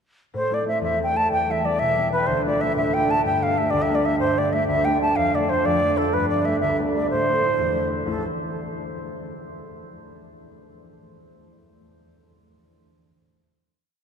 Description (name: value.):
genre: celtic folk, Celtic jig.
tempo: 124 BPM (dotted quarters).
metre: 6/8.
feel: straight.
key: A minor.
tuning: A4 = 440 Hz.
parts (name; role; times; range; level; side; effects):
concert harp; accompaniment; 0.3-9.3 s; A1 to G4; -25 LUFS; equal; none.
baroque flute; melody; 0.4-8.2 s; A4 to A5; -22 LUFS; equal; none.
room: wet cathedral reverb, RT60 6.6 s.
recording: in a vast, echoing space.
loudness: -19 LUFS.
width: side -7 dB against mid.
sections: 0.3-8.1 A section; 8.1-9.0 final chord.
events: none.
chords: 0.3 Am; 1.3 Em; 2.3 Dm; 3.2 Gadd9; 5.2 Dm/F; 6.1 Gadd9; 7.1 Am; 8.1 A.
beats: | 0.33 0.82 | 1.30 1.79 | 2.27 2.75 | 3.24 3.72 | 4.20 4.68 | 5.17 5.65 | 6.13 6.61 | 7.09 7.58 | 8.06 8.54.